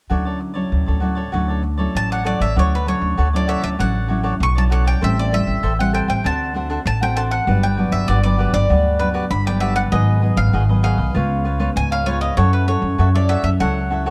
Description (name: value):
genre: samba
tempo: 98 BPM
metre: 4/4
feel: straight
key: D major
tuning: A4 = 440 Hz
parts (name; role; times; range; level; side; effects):
- cavaquinho; accompaniment; 0.1-14.1 s; D4 to G5; -28 LUFS; equal; none
- nylon-string guitar; accompaniment; 0.1-14.1 s; G2 to A4; -26 LUFS; equal; none
- upright bass; bass; 0.1-14.1 s; G1 to F#2; -21 LUFS; equal; none
- bowl-back mandolin; melody; 2.0-14.1 s; B4 to C#6; -26 LUFS; equal; none
room: light reverb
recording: dark, warm production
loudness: -18 LUFS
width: mono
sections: 0.1-2.6 A section; 2.6-14.1 B section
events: none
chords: 0.1 Dmaj9; 5.0 Am7; 6.2 D7; 7.5 Gmaj7; 9.9 G#m7; 11.2 C#7; 12.4 F#m7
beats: | 0.11 0.72 1.34 1.95 | 2.56 3.18 3.79 4.41 | 5.02 5.63 6.24 6.86 | 7.47 8.08 8.70 9.31 | 9.92 10.54 11.15 11.77 | 12.38 12.99 13.61